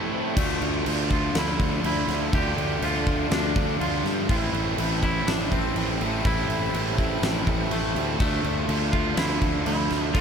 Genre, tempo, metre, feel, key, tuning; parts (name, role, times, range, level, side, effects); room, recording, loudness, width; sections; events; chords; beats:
rock, shoegaze and dream pop; 123 BPM; 4/4; straight; D minor; A4 = 440 Hz
twangy electric guitar; melody; 0.0-10.2 s; A3 to G4; -31 LUFS; right 1 dB; digital delay
icy glass pad; sustained chords; 0.0-10.2 s; F3 to A5; -36 LUFS; right 1 dB; chorus, built-in reverb
crunchy overdriven guitar; riff; 0.0-10.2 s; A2 to F4; -30 LUFS; left 12 dB; lush chorus
crunchy overdriven guitar; riff; 0.0-10.2 s; A2 to F4; -30 LUFS; right 13 dB; reverse reverb
fuzz fingered electric bass; bass; 0.4-10.2 s; A1 to G2; -29 LUFS; equal; overdrive
huge arena drum kit; drums; 0.4-10.2 s; crash cymbal, kick drum, snare drum; -27 LUFS; equal
light reverb, small room ambience; -22 LUFS; side -7 dB against mid
0.4-10.2 A section
break 0.0-0.4
0.4 Dmadd9; 4.3 Am7; 8.2 Dmadd9
| 0.36 0.85 1.35 1.84 | 2.33 2.82 3.31 3.80 | 4.29 4.78 5.27 5.76 | 6.25 6.74 7.22 7.71 | 8.20 8.69 9.17 9.66 | 10.15